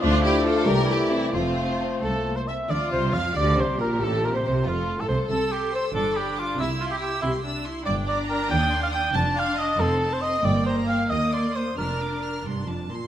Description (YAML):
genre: quick classical-period movement for symphony orchestra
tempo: 92 BPM (dotted quarters)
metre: 6/8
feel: rubato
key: F major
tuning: A4 = 439 Hz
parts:
  - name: clear clarinet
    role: second line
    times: 0.0-2.5 s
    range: A3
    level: -32 LUFS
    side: left 2 dB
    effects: none
  - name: rich studio violin section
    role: second line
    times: 0.0-12.4 s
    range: E4 to Bb5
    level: -31 LUFS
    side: left 2 dB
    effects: none
  - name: warm cor anglais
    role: second line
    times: 0.0-12.4 s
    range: E4 to A5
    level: -27 LUFS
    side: right 1 dB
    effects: none
  - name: rich chamber viola section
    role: accompaniment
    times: 0.0-12.8 s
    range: Bb3 to A4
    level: -29 LUFS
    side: equal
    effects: none
  - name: warm bassoon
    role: accompaniment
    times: 0.0-2.5 s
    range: E3 to F3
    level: -31 LUFS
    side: left 1 dB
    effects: none
  - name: dark French horn section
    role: sustained chords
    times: 0.0-2.7 s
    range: A3 to F4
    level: -29 LUFS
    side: left 4 dB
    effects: none
  - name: clear chamber double bass section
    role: bass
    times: 0.0-13.0 s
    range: F1 to F2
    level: -30 LUFS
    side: right 2 dB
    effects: none
  - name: warm chamber cello section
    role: bass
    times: 0.0-13.1 s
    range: C2 to F3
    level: -30 LUFS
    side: right 1 dB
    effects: none
  - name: rich chamber violin section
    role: melody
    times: 0.5-13.1 s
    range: F4 to F6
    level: -35 LUFS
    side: left 2 dB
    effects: none
room: wet recital hall reverb, RT60 1.6 s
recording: none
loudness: -22 LUFS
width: side -11 dB against mid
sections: 0.0-2.7 A section; 2.7-13.1 B section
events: none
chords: 0.0 Dm; 0.7 C69; 1.4 F; 2.7 F5; 3.4 C5; 4.0 F/A; 5.3 C; 6.0 G; 6.6 C; 7.9 Gm; 8.5 Cm/Eb; 9.2 F; 10.4 Gm; 11.1 Cm/Eb; 11.8 Bb/F; 12.4 F